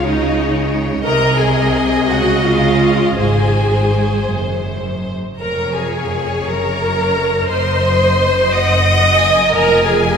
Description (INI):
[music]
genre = classical, slow romantic movement for string orchestra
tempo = 52-63 BPM (dotted quarters)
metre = 6/8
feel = rubato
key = Db major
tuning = A4 = 440 Hz
[part]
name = rich chamber violin section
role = melody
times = 0.0-10.2 s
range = C5 to Ab5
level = -23 LUFS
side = left 2 dB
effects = none
[part]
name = clear studio violin section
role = second line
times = 0.0-10.2 s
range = Eb5 to Eb6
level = -22 LUFS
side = left 3 dB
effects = none
[part]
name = rich studio viola section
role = accompaniment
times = 0.0-10.2 s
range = Eb4 to Eb5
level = -16 LUFS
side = equal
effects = none
[part]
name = bright studio cello section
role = bass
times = 0.0-10.2 s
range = F2 to Db3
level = -20 LUFS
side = equal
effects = none
[part]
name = clear chamber double bass section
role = bass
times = 0.0-10.2 s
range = F1 to Db2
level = -20 LUFS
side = right 2 dB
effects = none
[sound]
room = wet church reverb, RT60 3.0 s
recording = minimal, uncompressed stereo recording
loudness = -13 LUFS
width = side -6 dB against mid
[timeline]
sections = 0.0-10.2 A section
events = none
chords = 0.0 Dbsus2; 1.1 Ab/C; 2.1 Db; 3.2 Ab; 5.4 Db/F; 6.5 Gb; 7.5 Ab7/Gb (rootless); 9.5 Fmadd11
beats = 0.08 | 1.05 2.10 | 3.19 4.29 | 5.41 6.49 | 7.52 8.55 | 9.54